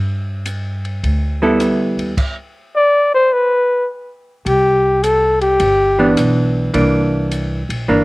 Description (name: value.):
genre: jazz, small-group swing and bop.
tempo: 105 BPM.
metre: 4/4.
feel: swing 68% on 8ths.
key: G major, C major from 4.5 s.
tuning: A4 = 439 Hz.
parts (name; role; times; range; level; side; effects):
upright bass; bass; 0.0-8.0 s; G1 to G2; -20 LUFS; equal; none.
compact cocktail drum kit; drums; 0.5-8.0 s; crash cymbal, hi-hat, kick drum, ride cymbal, rim click; -27 LUFS; equal; none.
vintage hollow-body jazz guitar; accompaniment; 1.4-2.1, 6.0-8.0 s; E3 to A4; -14 LUFS; right 1 dB; none.
trumpet with bucket mute; melody; 2.8-6.1 s; G4 to D5; -12 LUFS; left 1 dB; slapback echo.
room: little or no reverb.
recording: recorded outdoors, with no room sound.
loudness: -13 LUFS.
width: side -22 dB against mid.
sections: 0.0-4.5 A section; 4.5-8.0 B section.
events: none.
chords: 0.0 G69; 2.2 N.C.; 4.5 Cmaj9; 6.7 C9.